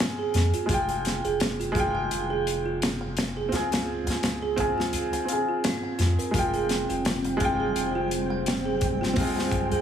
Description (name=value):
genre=trip hop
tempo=85 BPM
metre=4/4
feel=swing 56% on 16ths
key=F minor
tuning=A4 = 443 Hz
part: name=warm upright piano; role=accompaniment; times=0.0-9.8 s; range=Ab3 to G5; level=-28 LUFS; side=equal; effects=harmonic tremolo, tape echo
part: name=music box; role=arpeggios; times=0.0-9.8 s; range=C4 to F5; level=-31 LUFS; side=right 6 dB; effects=tape echo
part: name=modern studio drum kit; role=drums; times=0.0-9.8 s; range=hi-hat, kick drum, snare drum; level=-29 LUFS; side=left 1 dB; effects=none
part: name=round analog bass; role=bass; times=0.3-9.8 s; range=F1 to F2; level=-31 LUFS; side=equal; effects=none
part: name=warbly tape-like pad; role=sustained chords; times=6.7-9.8 s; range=C4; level=-31 LUFS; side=left 1 dB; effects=chorus, built-in reverb
part: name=flickering grainy texture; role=texture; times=7.0-9.8 s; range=G3 to G5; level=-34 LUFS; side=equal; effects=built-in reverb
room=light reverb, studio ambience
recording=heavily compressed radio sound, small room ambience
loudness=-24 LUFS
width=side -9 dB against mid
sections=0.0-9.8 A section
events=none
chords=0.0 Dbmaj7 (rootless); 0.7 Fmadd9; 3.5 Dbmaj7; 6.3 Fmadd9; 9.2 Dbmaj7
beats=| 0.70 1.40 2.11 2.81 | 3.52 4.23 4.93 5.64 | 6.34 7.05 7.76 8.46 | 9.17